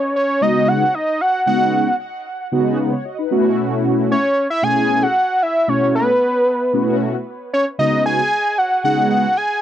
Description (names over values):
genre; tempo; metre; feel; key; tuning
funk; 114 BPM; 4/4; straight; C# minor; A4 = 440 Hz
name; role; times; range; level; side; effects
fat analog lead; melody; 0.0-9.6 s; B4 to G#5; -17 LUFS; right 1 dB; chorus, tape echo
mellow synth brass; accompaniment; 0.4-9.3 s; B2 to D#5; -17 LUFS; left 1 dB; chorus
room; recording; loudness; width
light reverb; dry, close 1970s-style studio recording; -15 LUFS; side -11 dB against mid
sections
0.0-9.6 A section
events
none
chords
0.0 C#9sus4; 3.3 B9sus4; 7.8 C#9sus4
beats
0.41 0.94 | 1.47 1.99 2.52 3.05 | 3.57 4.10 4.62 5.15 | 5.68 6.20 6.73 7.26 | 7.78 8.31 8.84 9.36